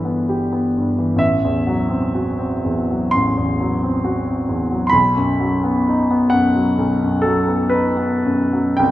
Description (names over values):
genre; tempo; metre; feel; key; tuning
classical, romantic nocturne for solo piano; 52-68 BPM; 4/4; rubato; unclear; A4 = 440 Hz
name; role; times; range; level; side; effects
warm grand piano; solo; 0.0-8.9 s; G1 to C6; -16 LUFS; equal; none
room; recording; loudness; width
wet recital hall reverb, RT60 1.4 s; none; -16 LUFS; side -14 dB against mid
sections
0.0-8.9 A section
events
none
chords
0.0 Em/G; 1.2 F#m7b5/A; 4.9 B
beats
0.28 | 1.21 2.12 3.14 4.04 | 4.93 5.86 6.79 7.73 | 8.81